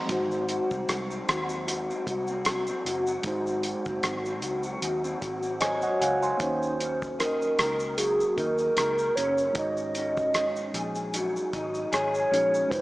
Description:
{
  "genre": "indie pop, bedroom pop",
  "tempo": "76 BPM",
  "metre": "4/4",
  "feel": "swing 55% on 16ths",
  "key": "unclear",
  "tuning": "A4 = 440 Hz",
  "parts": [
    { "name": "electric guitar through a small old amp", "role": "accompaniment", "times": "0.0-12.8 s", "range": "F2 to Bb4", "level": "-30 LUFS", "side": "left 1 dB", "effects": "ensemble chorus, warbly pitch drift" },
    { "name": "mellow reed electric piano", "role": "accompaniment", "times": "0.0-12.8 s", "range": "Ab3 to C6", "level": "-33 LUFS", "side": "right 1 dB", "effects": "cassette tape, slapback echo" },
    { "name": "vintage muted fingered electric bass", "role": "bass", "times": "0.1-12.8 s", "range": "F1 to Eb2", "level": "-40 LUFS", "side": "equal", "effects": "none" },
    { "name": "cloth-damped thuddy drum kit", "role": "drums", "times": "0.1-12.8 s", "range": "hi-hat, kick drum, rim click, shaker", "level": "-31 LUFS", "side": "equal", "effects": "none" },
    { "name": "hollow clarinet-like synth lead", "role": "melody", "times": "5.6-12.8 s", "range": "Ab4 to Eb5", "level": "-26 LUFS", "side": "equal", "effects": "lush chorus, slapback echo" }
  ],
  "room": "wet lush hall reverb, RT60 2.0 s",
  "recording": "big arena sound, small speaker sound",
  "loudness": "-25 LUFS",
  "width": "side -18 dB against mid",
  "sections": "0.1-6.4 A section; 6.4-12.8 B section",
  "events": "reed electric piano fill 5.2-6.4",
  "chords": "0.1 Ab7; 6.4 Ebm7; 9.6 Ab7sus4",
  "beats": "| 0.09 0.88 1.67 2.46 | 3.25 4.04 4.82 5.61 | 6.40 7.19 7.98 8.77 | 9.56 10.35 11.14 11.93 | 12.71"
}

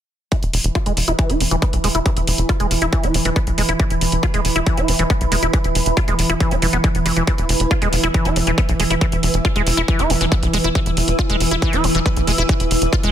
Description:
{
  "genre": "psychedelic trance",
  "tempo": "138 BPM",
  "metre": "4/4",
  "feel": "straight",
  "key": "unclear",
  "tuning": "A4 = 442 Hz",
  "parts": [
    { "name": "evolving wavetable pad", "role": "sustained chords", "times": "0.6-13.1 s", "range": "E3", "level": "-25 LUFS", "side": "right 3 dB", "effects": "chorus, built-in reverb, sidechain pumping" },
    { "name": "liquid acid bass", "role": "riff", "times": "0.3-13.1 s", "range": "E3 to F4", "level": "-22 LUFS", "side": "equal", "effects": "chorus, auto-pan, sidechain pumping, tape echo" },
    { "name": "electronic hi-hat", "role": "drums", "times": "0.3-13.1 s", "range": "none", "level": "-24 LUFS", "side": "right 1 dB", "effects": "overdrive" },
    { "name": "electronic kick drum", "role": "drums", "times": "0.3-13.0 s", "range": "none", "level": "-19 LUFS", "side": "equal", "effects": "overdrive" },
    { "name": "granular cloud pad", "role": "texture", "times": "1.4-13.1 s", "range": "E4 to E6", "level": "-26 LUFS", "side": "equal", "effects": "built-in reverb, sidechain pumping" },
    { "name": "tight sequencer bass", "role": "bass", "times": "0.4-13.1 s", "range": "E1 to B1", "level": "-20 LUFS", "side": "equal", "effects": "none" }
  ],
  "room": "little or no reverb",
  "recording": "dense, heavily limited modern master",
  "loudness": "-15 LUFS",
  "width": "side -10 dB against mid",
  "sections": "0.3-13.1 A section",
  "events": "none",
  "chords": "0.3 E5",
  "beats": "| 0.32 0.75 1.19 1.62 | 2.06 2.49 2.93 3.36 | 3.80 4.23 4.67 5.10 | 5.54 5.97 6.41 6.84 | 7.27 7.71 8.14 8.58 | 9.01 9.45 9.88 10.32 | 10.75 11.19 11.62 12.06 | 12.49 12.93"
}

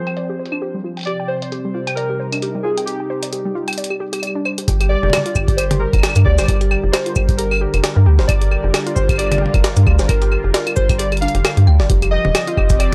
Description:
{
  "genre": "IDM",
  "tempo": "133 BPM",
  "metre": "4/4",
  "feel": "swing 56% on 16ths",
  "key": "G phrygian",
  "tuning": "A4 = 440 Hz",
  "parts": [
    { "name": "warbly lo-fi synth keys", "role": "melody", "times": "0.0-12.9 s", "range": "G4 to F5", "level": "-26 LUFS", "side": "equal", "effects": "chorus, analog delay" },
    { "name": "phased analog pad", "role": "sustained chords", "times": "0.0-12.9 s", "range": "C3 to Bb4", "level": "-29 LUFS", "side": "equal", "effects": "phaser, chorus" },
    { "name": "warbly dusty pluck", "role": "arpeggios", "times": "0.1-12.9 s", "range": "G3 to G5", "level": "-28 LUFS", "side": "equal", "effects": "chorus, tape echo" },
    { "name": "jungle sampler-style drum kit", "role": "drums", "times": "0.1-12.9 s", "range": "claves, hi-hat, shaker, snare drum, toms", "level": "-23 LUFS", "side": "equal", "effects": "none" },
    { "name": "metallic FM bass", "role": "bass", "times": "4.7-12.9 s", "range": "Eb1 to G2", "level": "-18 LUFS", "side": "equal", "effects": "none" },
    { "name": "electronic kick drum", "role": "drums", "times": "4.7-12.8 s", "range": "none", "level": "-20 LUFS", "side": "equal", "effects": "overdrive" }
  ],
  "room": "digital ambience",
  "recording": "dry, gritty hardware recording, transformer saturation, low-pass filter",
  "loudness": "-17 LUFS",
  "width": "mono",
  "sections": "0.0-4.7 A section; 4.7-12.9 B section",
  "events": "filter sweep on analog synth pad 0.0-4.7; filter sweep 0.0-4.7",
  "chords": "0.0 Fmadd9; 1.1 Cmadd9; 4.7 Gm7; 11.9 F7sus2",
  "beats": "0.17 0.62 | 1.07 1.52 1.97 2.42 | 2.87 3.33 3.78 4.23 | 4.68 5.13 5.58 6.03 | 6.48 6.93 7.39 7.84 | 8.29 8.74 9.19 9.64 | 10.09 10.54 10.99 11.45 | 11.90 12.35 12.80"
}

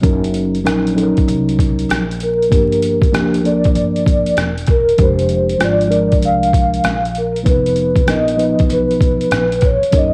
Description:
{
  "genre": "hip hop, jazz-hop",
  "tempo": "97 BPM",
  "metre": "4/4",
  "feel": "swing 66% on 16ths",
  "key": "unclear",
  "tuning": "A4 = 440 Hz",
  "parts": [
    { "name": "mellow tine electric piano", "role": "accompaniment", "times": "0.0-10.1 s", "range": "F3 to B4", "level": "-20 LUFS", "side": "equal", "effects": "cassette tape" },
    { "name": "upright bass", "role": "bass", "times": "0.0-10.1 s", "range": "E1 to D2", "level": "-25 LUFS", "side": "equal", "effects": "none" },
    { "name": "trip hop sampler-style drum kit", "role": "drums", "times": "0.0-10.1 s", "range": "hi-hat, kick drum, rim click", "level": "-19 LUFS", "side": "equal", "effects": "cassette tape" },
    { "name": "vibraphone with soft mallets", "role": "melody", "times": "2.2-10.1 s", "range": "Bb4 to F5", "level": "-19 LUFS", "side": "equal", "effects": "cassette tape" }
  ],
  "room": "moderate spring reverb, RT60 1.4 s, digital ambience",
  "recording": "home recording on cassette, vinyl crackle",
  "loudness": "-15 LUFS",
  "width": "mono",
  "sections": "0.0-10.1 A section",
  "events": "none",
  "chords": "0.0 Gb6; 2.5 Gm7; 5.0 Fm69; 7.5 Bmaj7#11/E#",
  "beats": "| 0.03 0.65 1.27 1.89 | 2.51 3.13 3.75 4.36 | 4.98 5.60 6.22 6.84 | 7.46 8.07 8.69 9.31 | 9.93"
}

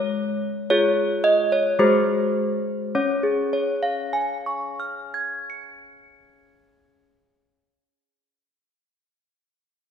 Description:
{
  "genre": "classical, tune for handbells",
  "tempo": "50-60 BPM",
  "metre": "3/4",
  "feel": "straight",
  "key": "Db major",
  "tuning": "A4 = 441 Hz",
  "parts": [
    { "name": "desk bells", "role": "solo", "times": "0.0-8.0 s", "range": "Ab3 to Db7", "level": "-20 LUFS", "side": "equal", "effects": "none" }
  ],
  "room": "wet scoring stage reverb, RT60 1.8 s",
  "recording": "recorded in a church or concert hall",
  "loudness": "-20 LUFS",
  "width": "side -8 dB against mid",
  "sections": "0.0-3.0 A section; 3.0-6.5 B section",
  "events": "slowing down 0.0-3.0",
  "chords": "0.0 Db/Ab; 1.8 Ab7; 3.0 Db",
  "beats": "0.71 1.79 | 2.96 4.13 5.30"
}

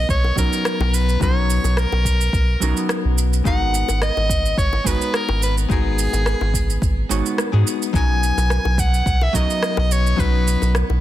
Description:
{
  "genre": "sunset chillout",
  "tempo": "107 BPM",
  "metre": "4/4",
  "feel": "swing 53% on 16ths",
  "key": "B major",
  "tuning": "A4 = 440 Hz",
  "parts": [
    { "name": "edgy soprano saxophone", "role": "melody", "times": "0.0-10.8 s", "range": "G#4 to G#5", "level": "-24 LUFS", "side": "equal", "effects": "ping-pong delay" },
    { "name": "archtop guitar, miked and amplified", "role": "accompaniment", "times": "0.0-11.0 s", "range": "F#3 to C#5", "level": "-25 LUFS", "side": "moving between left 9 dB and right 6 dB", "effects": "auto-pan, low-pass filter" },
    { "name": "warm sub bass", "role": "bass", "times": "0.0-11.0 s", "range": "G#1 to G#2", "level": "-19 LUFS", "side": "equal", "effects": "none" },
    { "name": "electronic kick drum", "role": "drums", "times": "0.1-10.3 s", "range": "none", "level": "-22 LUFS", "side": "equal", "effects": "overdrive" },
    { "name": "electronic shaker and rim click", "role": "drums", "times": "0.1-10.9 s", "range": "none", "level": "-26 LUFS", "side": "right 2 dB", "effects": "overdrive" },
    { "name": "bongos", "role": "percussion", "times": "0.2-11.0 s", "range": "none", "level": "-31 LUFS", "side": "left 8 dB", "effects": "none" }
  ],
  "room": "light reverb, digital ambience",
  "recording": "dense, heavily limited modern master",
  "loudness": "-16 LUFS",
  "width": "side -13 dB against mid",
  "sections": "0.0-11.0 A section",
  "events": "none",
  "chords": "0.0 Bmaj9; 3.5 G#m9; 7.9 Bmaj9",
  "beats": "0.09 0.65 | 1.21 1.77 2.33 2.90 | 3.46 4.02 4.58 5.14 | 5.70 6.26 6.82 7.38 | 7.94 8.50 9.06 9.62 | 10.19 10.75"
}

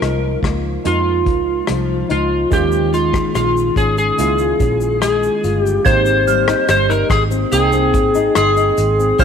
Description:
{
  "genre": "indie pop, bedroom pop",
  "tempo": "72 BPM",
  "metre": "4/4",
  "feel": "straight",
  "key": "Ab major",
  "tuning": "A4 = 444 Hz",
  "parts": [
    { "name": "electric slide guitar", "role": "melody", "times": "0.0-9.2 s", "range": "F4 to C5", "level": "-16 LUFS", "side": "left 2 dB", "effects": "lush chorus, slapback echo" },
    { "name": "nylon-string guitar", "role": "accompaniment", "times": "0.0-9.2 s", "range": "Bb2 to F4", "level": "-23 LUFS", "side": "left 11 dB", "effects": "lush chorus, vibrato effect" },
    { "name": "warbly lo-fi synth keys", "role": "accompaniment", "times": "0.0-9.2 s", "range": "Ab3 to G5", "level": "-23 LUFS", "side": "right 14 dB", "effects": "chorus, cassette tape" },
    { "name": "vintage muted fingered electric bass", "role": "bass", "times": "0.0-9.2 s", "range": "G1 to F2", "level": "-20 LUFS", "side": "right 1 dB", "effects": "none" },
    { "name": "unplugged drum kit", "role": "drums", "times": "0.0-9.2 s", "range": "hi-hat, kick drum, rim click, shaker", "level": "-21 LUFS", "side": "left 1 dB", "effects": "none" },
    { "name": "glassy synth bell", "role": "second line", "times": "5.8-9.2 s", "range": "C6 to Ab6", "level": "-25 LUFS", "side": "right 10 dB", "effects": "phaser, wide subtle chorus, slapback echo" },
    { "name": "group handclap", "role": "percussion", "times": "6.7-8.6 s", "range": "none", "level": "-32 LUFS", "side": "left 12 dB", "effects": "none" }
  ],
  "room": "light reverb, studio reverb",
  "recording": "1960s-style stereo with parts hard left and right",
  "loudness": "-13 LUFS",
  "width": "side -7 dB against mid",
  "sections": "0.0-5.9 A section; 5.9-9.2 B section",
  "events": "none",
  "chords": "0.0 Db69; 2.5 Eb9sus4; 5.9 Abmaj7",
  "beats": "0.01 0.85 1.68 | 2.52 3.35 4.18 5.02 | 5.85 6.69 7.52 8.36 | 9.19"
}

